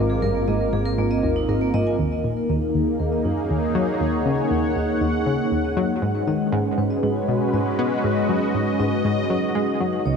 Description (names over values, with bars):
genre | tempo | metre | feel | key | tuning
ambient, sequencer-driven space music | 119 BPM | 4/4 | straight | Eb minor | A4 = 440 Hz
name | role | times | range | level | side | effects
sweeping resonant pad | sustained chords | 0.0-10.2 s | Ab3 to D6 | -22 LUFS | equal | chorus
analog pluck | riff | 0.0-10.2 s | Db2 to Cb4 | -24 LUFS | left 1 dB | chorus, tape echo
analog drone | bass | 0.0-2.0 s | Ab1 | -30 LUFS | equal | chorus
bubbling stepped-filter texture | texture | 0.0-2.0 s | F5 | -40 LUFS | right 7 dB | chorus, built-in reverb
vibraphone with hard mallets | arpeggios | 0.1-10.2 s | Bb3 to Eb6 | -32 LUFS | right 3 dB | auto-pan, tape echo
room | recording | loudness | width
moderate plate reverb, RT60 3.4 s | cassette tape | -19 LUFS | side -6 dB against mid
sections
0.0-2.0 A section; 2.0-10.2 B section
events
fade-in on vibraphone 2.0-10.2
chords
0.0 Absus2; 2.0 Ebm; 6.0 Abm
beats
0.48 0.98 1.49 | 1.99 2.49 3.00 3.50 | 4.01 4.51 5.01 5.52 | 6.02 6.53 7.03 7.54 | 8.04 8.54 9.05 9.55 | 10.06